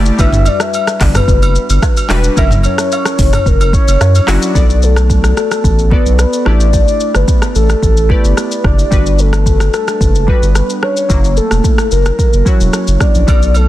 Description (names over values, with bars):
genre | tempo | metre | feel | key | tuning
afrobeats | 110 BPM | 4/4 | straight | unclear | A4 = 440 Hz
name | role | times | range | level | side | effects
glassy digital keys | accompaniment | 0.0-13.7 s | F#3 to D5 | -20 LUFS | left 1 dB | chorus
saturated sub bass | bass | 0.0-13.7 s | E1 to F#2 | -11 LUFS | equal | none
afro-pop drum kit | drums | 0.1-13.7 s | handclaps, hi-hat, kick drum, rim click, shaker, toms | -13 LUFS | equal | soft clipping on snare
soft octave-layered synth lead | melody | 0.2-13.7 s | A4 to E5 | -17 LUFS | left 1 dB | chorus, phaser, tape echo
agogo bells and woodblock | percussion | 0.2-4.3, 13.3-13.7 s | none | -23 LUFS | right 4 dB | none
room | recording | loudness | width
little or no reverb | dense, heavily limited modern master | -9 LUFS | side -14 dB against mid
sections
0.0-4.6 A section; 4.6-13.7 B section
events
none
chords
0.2 Gmaj7; 2.4 F#7; 4.6 Bm7; 6.5 A7sus4; 8.9 Gmaj7; 11.1 F#7